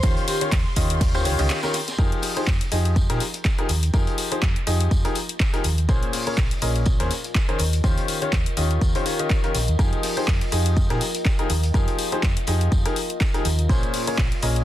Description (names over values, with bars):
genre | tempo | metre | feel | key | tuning
piano house | 123 BPM | 4/4 | swing 56% on 16ths | F minor | A4 = 442 Hz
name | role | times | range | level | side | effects
dark studio violin section | sustained chords | 0.0-2.0 s | C6 | -36 LUFS | right 2 dB | sidechain pumping
bright concert grand piano | riff | 0.0-14.6 s | Bb2 to Eb5 | -26 LUFS | left 2 dB | sidechain pumping, tape echo
fingered electric bass | bass | 0.0-14.6 s | Bb1 to Bb2 | -23 LUFS | equal | sidechain pumping
crunchy breakbeat drum kit | drums | 0.0-14.6 s | hi-hat, snare drum, tambourine | -35 LUFS | equal | high-pass filter on hats, high-pass filter on snare, high-pass filter on perc, high-pass filter on room
electronic kick drum | drums | 0.0-14.3 s | none | -22 LUFS | equal | none
house drum kit | drums | 0.0-14.6 s | handclaps, hi-hat, ride cymbal | -29 LUFS | left 2 dB | none
deep dark ambient pad | texture | 3.4-14.6 s | F4 to G5 | -34 LUFS | left 1 dB | chorus, built-in reverb, sidechain pumping
room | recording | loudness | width
small room ambience | dense, heavily limited modern master | -19 LUFS | side -13 dB against mid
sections
0.0-2.0 A section; 2.0-14.6 B section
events
drop 0.0-2.0; break 1.5-2.0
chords
0.0 Eb13; 2.0 Fm11; 5.9 Bbm9; 7.6 Eb13; 9.8 Fm11; 13.7 Bbm9